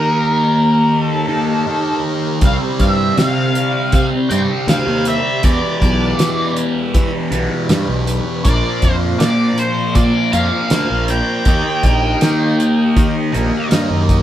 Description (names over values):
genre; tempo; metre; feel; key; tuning
psychedelic rock; 80 BPM; 4/4; straight; unclear; A4 = 438 Hz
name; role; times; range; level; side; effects
octave-fuzz lead guitar; melody; 0.0-13.7 s; Bb4 to G5; -20 LUFS; equal; wah, distortion
combo organ; sustained chords; 0.0-14.2 s; D3 to Eb5; -24 LUFS; right 4 dB; none
thick fuzz guitar; riff; 0.0-14.2 s; E2 to Eb4; -18 LUFS; left 1 dB; distortion, phaser
fuzz picked electric bass; bass; 2.4-14.2 s; Bb1 to E3; -19 LUFS; equal; overdrive
damped 70s drum kit; drums; 2.4-14.2 s; hi-hat, kick drum, snare drum; -16 LUFS; equal; none
room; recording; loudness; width
moderate studio reverb, RT60 0.5 s; band playing live in one room; -13 LUFS; side -12 dB against mid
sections
0.0-14.2 A section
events
none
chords
0.0 Eb; 2.4 Csus2; 5.4 Em7; 8.5 Bbadd9; 11.5 Eb